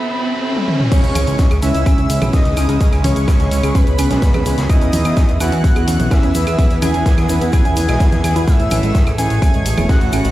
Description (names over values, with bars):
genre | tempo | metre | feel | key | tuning
melodic techno | 127 BPM | 4/4 | straight | C# minor | A4 = 439 Hz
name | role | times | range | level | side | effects
rich studio string section | sustained chords | 0.0-10.3 s | E3 to B5 | -28 LUFS | right 1 dB | sidechain pumping
riser | sound effects | 0.0-0.9 s | none | -21 LUFS | equal | none
deep house drum kit | drums | 0.6-10.3 s | claves, congas, crash cymbal, hi-hat, toms | -24 LUFS | right 1 dB | none
fat analog lead | melody | 0.9-10.3 s | B4 to G#5 | -24 LUFS | equal | wide subtle chorus, dub echo
airy dreamy lead | second line | 0.9-10.3 s | B5 to G#6 | -30 LUFS | right 1 dB | chorus, sidechain pumping, digital delay
woody wave-folded pluck | arpeggios | 0.9-10.3 s | G#3 to G#4 | -24 LUFS | equal | wide subtle chorus, sidechain pumping, digital delay
analog synth brass | stabs | 0.9-10.3 s | A2 to E4 | -23 LUFS | right 2 dB | chorus, sidechain pumping, digital delay
electronic kick drum | drums | 0.9-10.0 s | none | -13 LUFS | equal | none
raw garage drum kit | drums | 0.9-10.3 s | hi-hat, snare drum | -32 LUFS | equal | high-pass filter on hats, high-pass filter on snare, high-pass filter on room
egg shaker | percussion | 0.9-10.3 s | none | -34 LUFS | left 2 dB | none
granular cloud pad | texture | 2.2-10.3 s | A3 to B5 | -28 LUFS | equal | built-in reverb, sidechain pumping
fat analog bass | bass | 1.0-10.3 s | E1 to E2 | -18 LUFS | equal | tube saturation, sidechain pumping
room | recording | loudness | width
light reverb | played on a big sound system in a bare room, stone room reverb | -12 LUFS | side -15 dB against mid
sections
0.9-10.3 A section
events
break 0.0-0.9; riser 0.0-0.9; drum fill 0.6-0.9; drop 0.9-10.3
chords
0.0 B7sus4; 0.9 C#m7; 8.5 Amaj7